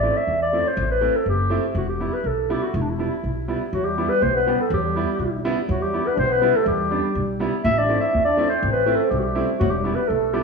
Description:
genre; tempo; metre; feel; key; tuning
klezmer; 122 BPM; 2/4; straight; E minor; A4 = 441 Hz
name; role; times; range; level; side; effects
dark clarinet; melody; 0.0-10.4 s; D4 to E5; -22 LUFS; equal; none
bright upright piano; accompaniment; 0.0-10.4 s; G3 to G4; -26 LUFS; right 3 dB; none
upright bass; bass; 0.0-10.4 s; E1 to E2; -26 LUFS; left 1 dB; none
warm trombone; second line; 3.7-10.4 s; F#3 to E4; -27 LUFS; left 4 dB; none
room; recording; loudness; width
wet recital hall reverb, RT60 1.6 s; worn, warbling old tape, cassette tape, warbly pitch drift, studio reverb; -19 LUFS; side -4 dB against mid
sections
0.0-3.7 A section; 3.7-10.4 A section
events
none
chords
0.0 Am; 1.8 Em; 7.6 Am; 9.6 Em

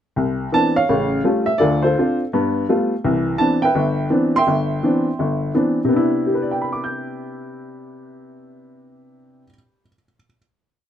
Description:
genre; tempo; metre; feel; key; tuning
solo jazz; 167 BPM; 4/4; swing 65% on 8ths; C major; A4 = 440 Hz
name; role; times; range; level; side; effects
warm upright piano; solo; 0.2-10.4 s; G1 to G6; -17 LUFS; equal; none
room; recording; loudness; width
light reverb; none; -16 LUFS; side -10 dB against mid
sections
0.2-5.9 A section; 5.9-8.8 final chord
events
none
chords
0.2 Cmaj9; 0.9 A7b13; 1.6 Dm7; 2.3 G9; 3.0 Cmaj9

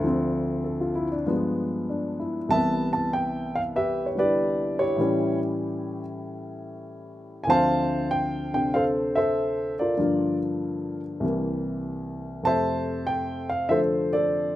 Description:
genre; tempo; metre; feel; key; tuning
solo jazz; 96 BPM; 4/4; swing 69% on 8ths; C major; A4 = 440 Hz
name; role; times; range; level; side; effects
warm upright piano; solo; 0.0-14.6 s; C2 to A5; -23 LUFS; equal; none
room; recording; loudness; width
studio reverb; rough home demo mix; -23 LUFS; side -14 dB against mid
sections
0.0-2.5 A section; 2.5-14.6 B section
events
upright piano solo 0.0-2.5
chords
0.0 Dm7; 1.3 G7b9; 2.5 Cmaj7; 5.0 A7; 7.5 Dm7; 10.0 Gm7; 11.2 C7; 12.5 Fmaj7

